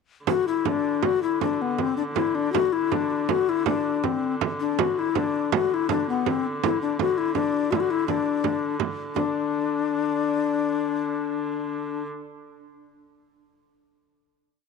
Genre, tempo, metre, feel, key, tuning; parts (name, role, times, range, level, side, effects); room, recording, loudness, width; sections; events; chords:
medieval dance; 163 BPM; 3/4; straight; D mixolydian; A4 = 440 Hz
breathy mellow bass recorder; melody; 0.3-12.0 s; B3 to F#4; -24 LUFS; left 9 dB
rich hurdy-gurdy; drone; 0.3-12.1 s; D3; -33 LUFS; right 2 dB
frame drum; percussion; 0.3-9.3 s; -27 LUFS; right 12 dB
moderate plate reverb, RT60 3.3 s; 1960s-style stereo with parts hard left and right; -22 LUFS; side -4 dB against mid
0.3-9.2 A section; 9.2-11.3 final note
speeding up 0.3-11.3